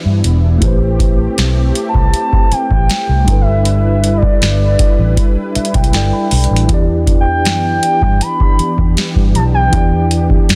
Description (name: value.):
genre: contemporary R&B.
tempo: 79 BPM.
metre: 4/4.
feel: straight.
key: E minor.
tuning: A4 = 445 Hz.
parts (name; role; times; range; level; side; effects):
mellow tine electric piano; accompaniment; 0.0-10.6 s; E3 to B5; -23 LUFS; equal; none.
warm analog pad; sustained chords; 0.0-10.6 s; E3 to B4; -25 LUFS; equal; chorus.
downlifter; sound effects; 0.0-0.6 s; none; barely audible; none; none.
vintage muted fingered electric bass; bass; 0.1-10.6 s; E1 to G2; -16 LUFS; equal; none.
booming analog drum machine; drums; 0.2-10.6 s; hi-hat, kick drum, snare drum; -16 LUFS; equal; vintage 12-bit sampler grit.
gliding portamento lead; melody; 1.9-10.3 s; D5 to B5; -20 LUFS; equal; chorus, tape echo.
room: digital ambience.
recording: dense, heavily limited modern master.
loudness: -13 LUFS.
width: mono.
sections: 0.0-10.6 A section.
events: tine electric piano fill 5.2-6.7.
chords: 0.0 Em7; 0.6 Am7; 3.3 G6; 6.7 Em7.